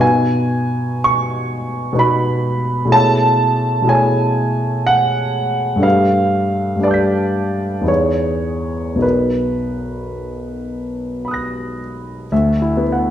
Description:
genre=classical, impressionist solo piano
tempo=52-66 BPM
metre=3/4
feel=rubato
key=B major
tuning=A4 = 440 Hz
part: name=warm grand piano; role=solo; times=0.0-13.1 s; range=B1 to B6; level=-15 LUFS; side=equal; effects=none
room=wet recital hall reverb, RT60 1.4 s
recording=none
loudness=-14 LUFS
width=side -10 dB against mid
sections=0.0-12.3 A section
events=none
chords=0.0 B6; 2.9 Amaj7/B; 5.8 G9; 7.9 Emaj7; 9.0 Bmaj7; 12.3 D69

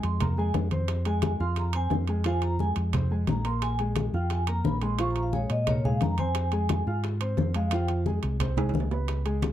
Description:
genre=Afro-Cuban jazz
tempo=176 BPM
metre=4/4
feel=straight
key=F minor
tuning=A4 = 439 Hz
part: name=vibraphone with medium mallets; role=melody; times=0.0-7.9 s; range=Db5 to Db6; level=-33 LUFS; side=equal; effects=none
part: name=warm grand piano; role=accompaniment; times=0.0-9.5 s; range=F3 to F6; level=-32 LUFS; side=equal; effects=none
part: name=fingered electric bass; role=bass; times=0.0-9.5 s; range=Bb1 to Bb2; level=-28 LUFS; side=equal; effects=none
part: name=bongos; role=percussion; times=0.0-9.5 s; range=none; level=-37 LUFS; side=left 8 dB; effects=none
part: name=congas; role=percussion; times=0.0-9.5 s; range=none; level=-31 LUFS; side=left 1 dB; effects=none
part: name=timbales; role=percussion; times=0.0-9.5 s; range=none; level=-36 LUFS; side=right 9 dB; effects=none
room=light reverb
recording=dark, warm production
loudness=-25 LUFS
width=side -12 dB against mid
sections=0.0-9.5 A section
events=vibraphone solo 0.0-9.5; drum fill 8.6-9.1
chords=0.0 Bb5; 6.4 Fm

